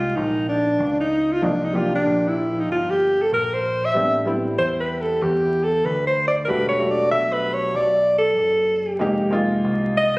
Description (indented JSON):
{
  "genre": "hip hop",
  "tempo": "95 BPM",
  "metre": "4/4",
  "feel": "swing 62% on 16ths",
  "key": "unclear",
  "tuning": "A4 = 440 Hz",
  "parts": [
    { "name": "mellow alto saxophone", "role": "melody", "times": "0.0-10.2 s", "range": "D4 to E5", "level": "-19 LUFS", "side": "equal", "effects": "none" },
    { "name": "dark upright piano", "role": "accompaniment", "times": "0.0-10.2 s", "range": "F3 to G4", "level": "-23 LUFS", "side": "equal", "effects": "none" },
    { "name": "deep dub picked electric bass", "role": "bass", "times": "0.0-10.2 s", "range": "E1 to E2", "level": "-29 LUFS", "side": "equal", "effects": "none" }
  ],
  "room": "light reverb, studio ambience",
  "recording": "recorded on a phone in the room, studio reverb, vinyl crackle, compression",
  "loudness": "-18 LUFS",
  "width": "side -24 dB against mid",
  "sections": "0.0-10.2 A section",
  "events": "alto saxophone solo 0.0-10.2",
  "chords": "0.0 Fm11 (rootless); 1.4 C9sus4; 4.0 Am11; 6.5 Em11; 9.0 Fm11"
}